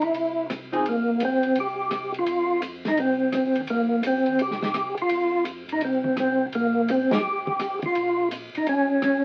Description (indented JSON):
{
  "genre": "soul jazz organ trio",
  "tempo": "169 BPM",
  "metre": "4/4",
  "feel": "swing 65% on 8ths",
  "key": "unclear",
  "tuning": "A4 = 440 Hz",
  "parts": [
    { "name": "percussive tonewheel organ", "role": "melody", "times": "0.0-9.2 s", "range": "Bb3 to G4", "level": "-24 LUFS", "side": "equal", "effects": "slow rotary speaker, overdrive, chorus vibrato" },
    { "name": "mellow tonewheel organ", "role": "bass", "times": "0.0-9.2 s", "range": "F1 to Gb2", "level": "-48 LUFS", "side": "equal", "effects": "slow rotary speaker" },
    { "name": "warm soul drum kit", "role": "drums", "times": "0.0-9.1 s", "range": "hi-hat, kick drum, ride cymbal, rim click, snare drum", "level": "-36 LUFS", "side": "equal", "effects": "none" },
    { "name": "archtop guitar, miked and amplified", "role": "accompaniment", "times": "0.7-0.8 s", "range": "F3 to Ab4", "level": "-26 LUFS", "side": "equal", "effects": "none" }
  ],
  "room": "wet studio ambience, RT60 0.5 s",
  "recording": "very old 78 rpm record, vinyl crackle",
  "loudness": "-24 LUFS",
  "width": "mono",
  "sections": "0.8-9.2 A section",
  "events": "band accent 7.1",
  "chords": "0.1 C; 0.8 F5; 6.5 Bbm"
}